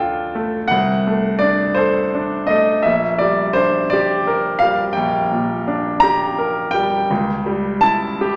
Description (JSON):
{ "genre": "classical, romantic nocturne for solo piano", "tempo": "56 BPM (dotted quarters)", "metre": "12/8", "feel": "rubato", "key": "D minor", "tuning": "A4 = 441 Hz", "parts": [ { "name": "clear concert grand piano", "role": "solo", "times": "0.0-8.4 s", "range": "Bb1 to Bb5", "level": "-18 LUFS", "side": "equal", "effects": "none" } ], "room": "wet recital hall reverb, RT60 1.6 s", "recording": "none", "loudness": "-18 LUFS", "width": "mono", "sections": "0.0-8.4 A section", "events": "none", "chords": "0.0 Dm; 0.7 D7/C; 2.9 Gm/Bb; 7.1 A7/C#" }